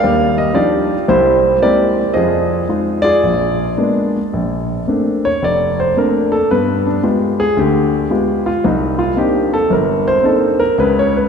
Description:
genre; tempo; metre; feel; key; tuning
solo jazz; 112 BPM; 4/4; swing 67% on 8ths, rubato; Bb major from 4.3 s; A4 = 440 Hz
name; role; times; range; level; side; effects
warm grand piano; solo; 0.0-11.3 s; F1 to F5; -12 LUFS; equal; none
room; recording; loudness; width
wet church reverb, RT60 3.6 s; recorded in a church or concert hall; -12 LUFS; side -6 dB against mid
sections
0.0-4.3 A section; 4.3-11.3 B section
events
grand piano solo 4.3-11.3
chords
0.0 Ebmaj9; 1.1 C7b13; 2.2 Fm7; 3.2 Bb7b9; 4.3 Bbmaj9; 6.5 G7b9; 8.6 Cm9; 10.8 Db7(no3)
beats
| 0.02 0.55 1.08 1.62 | 2.15 2.69 3.23 3.78 | 4.34 4.89 5.43 5.97 | 6.51 7.05 7.58 8.12 | 8.65 9.18 9.71 10.24 | 10.78

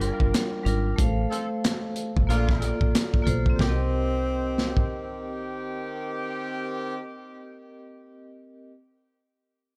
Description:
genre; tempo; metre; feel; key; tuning
hip hop, boom-bap hip-hop; 92 BPM; 4/4; swing 60% on 16ths; C dorian; A4 = 436 Hz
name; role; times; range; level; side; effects
vibraphone with hard mallets; accompaniment; 0.0-8.7 s; G3 to F5; -34 LUFS; equal; cassette tape
warm horn section; stabs; 0.0-7.0 s; D3 to Bb4; -37 LUFS; equal; delay
deep dub fingered electric bass; bass; 0.0-7.7 s; G1 to C2; -29 LUFS; equal; none
crunchy breakbeat drum kit; drums; 0.0-4.9 s; handclaps, hi-hat, kick drum, snare drum; -27 LUFS; equal; none
breathy tenor saxophone; melody; 3.6-5.5 s; C4; -34 LUFS; equal; delay
room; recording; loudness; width
small room ambience; none; -26 LUFS; mono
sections
0.0-3.6 A section; 3.6-6.2 B section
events
break 0.0-3.6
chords
0.0 Gm7; 1.0 F/A; 2.3 Bbmaj7; 3.6 Cm7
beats
0.33 | 0.98 1.64 2.29 2.94 | 3.59 4.25 4.90 5.55

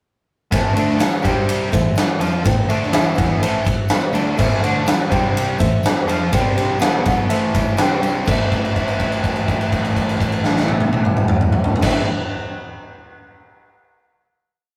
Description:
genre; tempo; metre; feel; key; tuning
classic rock; 124 BPM; 4/4; straight; A minor; A4 = 438 Hz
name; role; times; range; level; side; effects
warm upright piano; accompaniment; 0.5-12.0 s; E4 to G5; -28 LUFS; equal; none
cranked stack guitar; riff; 0.5-12.1 s; A2 to F4; -26 LUFS; equal; overdrive
distorted electric guitar; riff; 0.5-12.1 s; A2 to F4; -28 LUFS; equal; distortion
fuzz picked electric bass; bass; 0.5-12.0 s; A1 to F2; -29 LUFS; equal; none
huge arena drum kit; drums; 0.5-11.9 s; crash cymbal, kick drum, ride cymbal, snare drum, toms; -20 LUFS; equal; none
tambourine; percussion; 0.5-8.5 s; none; -46 LUFS; equal; none
room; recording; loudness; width
moderate booth ambience, RT60 0.2 s; rough rehearsal-room recording; -18 LUFS; mono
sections
0.5-8.3 riff; 8.3-12.1 final chord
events
held note 8.3-11.8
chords
0.5 Am; 1.2 C5; 1.7 Am; 2.9 E5; 3.4 Am; 5.1 C5; 5.6 Am; 6.3 C5; 6.8 B5; 7.3 Am; 7.8 C5; 8.3 Am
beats
| 0.51 0.99 1.48 1.96 | 2.45 2.93 3.42 3.90 | 4.39 4.88 5.36 5.85 | 6.33 6.82 7.30 7.79 | 8.27 8.76 9.24 9.72 | 10.20 10.68 11.16 11.64

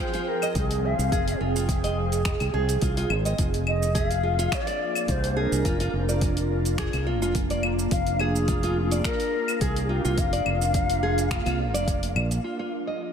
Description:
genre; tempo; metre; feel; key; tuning
organic downtempo; 106 BPM; 4/4; swing 54% on 16ths; unclear; A4 = 441 Hz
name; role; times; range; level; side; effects
mellow Native American-style cedar flute; melody; 0.0-11.9 s; G4 to F5; -30 LUFS; left 3 dB; diffuse ambient delay, shimmer reverb
ethereal airy pad; sustained chords; 0.0-13.1 s; F3 to G5; -30 LUFS; right 2 dB; ensemble chorus, built-in reverb, phaser, sidechain pumping, shimmer reverb
nylon-string guitar; arpeggios; 0.0-13.0 s; F4 to Eb5; -32 LUFS; right 1 dB; low-pass filter, analog delay, shimmer reverb
deep house drum kit; drums; 0.1-13.1 s; claves, finger snaps, hi-hat, shaker; -32 LUFS; left 1 dB; overdrive, low-pass filter on hats, low-pass filter on perc, low-pass filter on snare, low-pass filter on room
fretless electric bass; bass; 0.6-12.4 s; F1 to C2; -26 LUFS; equal; tube saturation
electronic kick drum; drums; 0.6-12.0 s; none; -28 LUFS; equal; overdrive
room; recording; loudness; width
moderate lush hall reverb, RT60 1.7 s, digital ambience; dreamy mix soaked in reverb; -22 LUFS; side -7 dB against mid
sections
0.0-12.4 A section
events
none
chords
0.0 Fm; 3.4 Bb/F; 12.4 Fmadd9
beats
0.56 | 1.12 1.69 2.25 2.82 | 3.39 3.95 4.52 5.08 | 5.65 6.22 6.78 7.35 | 7.92 8.48 9.05 9.61 | 10.18 10.74 11.31 11.88 | 12.44 13.01

